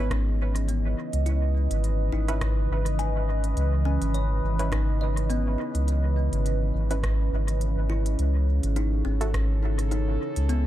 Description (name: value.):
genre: ambient dub.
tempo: 104 BPM.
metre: 4/4.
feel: swing 55% on 16ths.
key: C# minor.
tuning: A4 = 440 Hz.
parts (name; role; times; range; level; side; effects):
warbly tape-like pad; sustained chords; 0.0-10.7 s; C#3 to D#5; -31 LUFS; right 2 dB; chorus, built-in reverb, phaser.
kalimba; arpeggios; 0.0-10.7 s; B3 to G#5; -35 LUFS; left 3 dB; tape echo.
filtered dub chord stab; stabs; 0.0-9.3 s; C#4 to B4; -38 LUFS; right 2 dB; chorus, dub echo.
warm sub bass; bass; 0.0-10.7 s; G#1 to C#2; -24 LUFS; equal; tube saturation.
electronic kick drum; drums; 0.1-9.5 s; none; -32 LUFS; equal; none.
organic electronic drum kit; drums; 0.1-10.6 s; hi-hat, rim click; -39 LUFS; equal; small room ambience, dub echo.
room: digital ambience.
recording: none.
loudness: -23 LUFS.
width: side -13 dB against mid.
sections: 0.0-10.7 A section.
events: none.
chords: 0.0 C#m7; 8.2 F#m7 (rootless).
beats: 0.11 0.68 | 1.26 1.84 2.41 2.99 | 3.57 4.14 4.72 5.30 | 5.88 6.45 7.03 7.61 | 8.18 8.76 9.34 9.91 | 10.49.